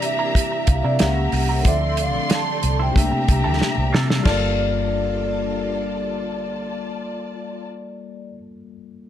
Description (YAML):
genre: lush 1970s-style soul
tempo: 92 BPM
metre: 4/4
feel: straight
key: G dorian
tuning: A4 = 441 Hz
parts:
  - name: vibraphone with soft mallets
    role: melody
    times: 0.0-8.3 s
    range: D5 to A5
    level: -26 LUFS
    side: equal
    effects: none
  - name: dark studio string section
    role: second line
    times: 0.0-7.6 s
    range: F4 to C6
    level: -29 LUFS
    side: left 1 dB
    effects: none
  - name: tine electric piano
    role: accompaniment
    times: 0.0-9.1 s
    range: C3 to E5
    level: -29 LUFS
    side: left 4 dB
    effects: auto-pan
  - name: string machine, full ensemble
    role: sustained chords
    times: 0.0-7.6 s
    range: Bb2 to A4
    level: -32 LUFS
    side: equal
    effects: ensemble chorus
  - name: damped 70s drum kit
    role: drums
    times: 0.0-4.4 s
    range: china cymbal, hi-hat, kick drum, snare drum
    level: -20 LUFS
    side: equal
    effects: none
  - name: clean electric guitar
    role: riff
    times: 0.2-8.4 s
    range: F3 to Bb4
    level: -32 LUFS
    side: right 5 dB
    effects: wah
  - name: vintage muted fingered electric bass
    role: bass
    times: 0.7-8.3 s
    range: G1 to C3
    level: -23 LUFS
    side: equal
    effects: none
room: studio ambience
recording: none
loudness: -18 LUFS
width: side -11 dB against mid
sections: 0.0-4.3 A section; 4.3-6.9 B section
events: drum fill 3.6-4.3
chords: 0.0 C9; 1.0 C#dim7; 1.7 Dm9; 3.0 C13; 4.3 Gm9